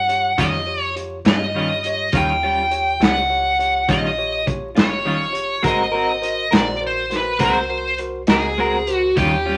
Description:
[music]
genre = slow blues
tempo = 68 BPM (dotted quarters)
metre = 12/8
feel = straight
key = unclear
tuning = A4 = 440 Hz
[part]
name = smooth overdriven lead guitar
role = melody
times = 0.0-9.6 s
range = G4 to G5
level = -22 LUFS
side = equal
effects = none
[part]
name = bell-like tine electric piano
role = accompaniment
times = 0.0-9.6 s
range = F4 to Eb5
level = -32 LUFS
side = equal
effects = none
[part]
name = metallic FM bass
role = bass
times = 0.0-9.6 s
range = F1 to G2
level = -34 LUFS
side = equal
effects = none
[part]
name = crunchy breakbeat drum kit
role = drums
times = 0.1-9.3 s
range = hi-hat, kick drum, snare drum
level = -21 LUFS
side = equal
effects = none
[part]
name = clean electric guitar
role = accompaniment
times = 0.4-9.6 s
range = Eb3 to Bb4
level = -24 LUFS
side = equal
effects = tremolo
[sound]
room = moderate studio reverb, RT60 0.8 s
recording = vinyl crackle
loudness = -19 LUFS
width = mono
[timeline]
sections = 0.0-9.6 A section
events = none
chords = 0.0 Eb9; 5.7 Ab9

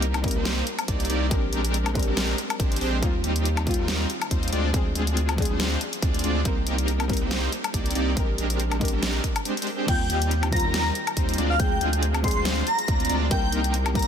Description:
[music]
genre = future bass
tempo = 140 BPM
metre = 4/4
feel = swing 55% on 16ths, half-time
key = C minor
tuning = A4 = 439 Hz
[part]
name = soft round pluck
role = accompaniment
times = 0.0-14.1 s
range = Eb3 to Bb4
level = -32 LUFS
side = left 2 dB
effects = ensemble chorus, sidechain pumping, tape echo
[part]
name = big bright polysynth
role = riff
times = 0.0-14.0 s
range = G3 to D5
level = -28 LUFS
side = right 1 dB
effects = cassette tape, sidechain pumping, tape echo
[part]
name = saturated sub bass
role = bass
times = 0.0-14.0 s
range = Bb1 to Eb2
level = -27 LUFS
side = equal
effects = sidechain pumping
[part]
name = dubstep drum kit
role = drums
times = 0.0-14.1 s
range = crash cymbal, hi-hat, snare drum, woodblock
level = -30 LUFS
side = left 2 dB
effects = none
[part]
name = electronic kick drum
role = drums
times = 0.2-14.0 s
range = none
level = -26 LUFS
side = equal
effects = none
[part]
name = airy dreamy lead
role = melody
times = 9.9-14.1 s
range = F5 to C6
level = -27 LUFS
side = equal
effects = chorus, sidechain pumping, digital delay
[sound]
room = light reverb, digital ambience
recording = dense, heavily limited modern master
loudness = -22 LUFS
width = side -8 dB against mid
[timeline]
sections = 0.0-14.1 A section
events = none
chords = 0.0 Cm7; 1.3 Bb13; 3.0 Eb69; 4.5 Dm7b5; 6.5 Cm7; 8.2 Bb13; 9.9 Eb69; 11.4 Dm7b5; 13.3 Cm7

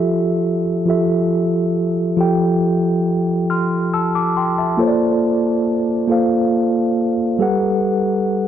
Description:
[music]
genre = R&B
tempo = 46 BPM (dotted quarters)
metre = 6/8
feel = straight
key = F major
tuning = A4 = 438 Hz
[part]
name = mellow tine electric piano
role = solo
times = 0.0-8.5 s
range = F3 to F6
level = -15 LUFS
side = equal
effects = medium stereo tremolo, ping-pong delay
[sound]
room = moderate echo chamber reverb, RT60 2.5 s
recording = dark, warm production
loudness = -15 LUFS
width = side -10 dB against mid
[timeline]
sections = 0.0-8.5 A section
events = none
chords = 0.0 Fmaj9; 4.8 Bbmaj9; 7.4 Gmaj9

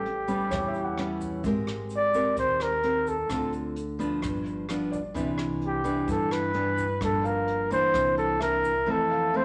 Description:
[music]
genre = bossa nova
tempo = 129 BPM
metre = 4/4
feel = straight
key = C major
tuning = A4 = 440 Hz
[part]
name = breathy flugelhorn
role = melody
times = 0.0-9.4 s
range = G4 to D5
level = -28 LUFS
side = equal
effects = none
[part]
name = nylon-string guitar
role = accompaniment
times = 0.0-9.4 s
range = F2 to Bb4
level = -32 LUFS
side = equal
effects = none
[part]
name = warm concert grand piano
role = accompaniment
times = 0.0-1.5, 4.9-9.4 s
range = A4 to F#5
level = -40 LUFS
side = equal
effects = none
[part]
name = upright bass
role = bass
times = 0.0-8.8 s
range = G1 to G2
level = -39 LUFS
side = equal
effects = none
[part]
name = jazz brush drum kit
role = drums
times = 0.1-8.7 s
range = hi-hat, kick drum, rim click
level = -43 LUFS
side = equal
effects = none
[part]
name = egg shaker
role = percussion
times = 0.3-8.9 s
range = none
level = -58 LUFS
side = equal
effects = none
[sound]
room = moderate large studio reverb, RT60 1.2 s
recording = nothing above 10.6 kHz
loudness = -27 LUFS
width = mono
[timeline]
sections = 0.0-8.9 A section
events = none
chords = 0.0 A9; 1.4 Abmaj9; 3.3 Dm7; 4.2 G7; 5.2 Cmaj9; 7.0 Gm7; 7.9 C9; 8.9 Fmaj7

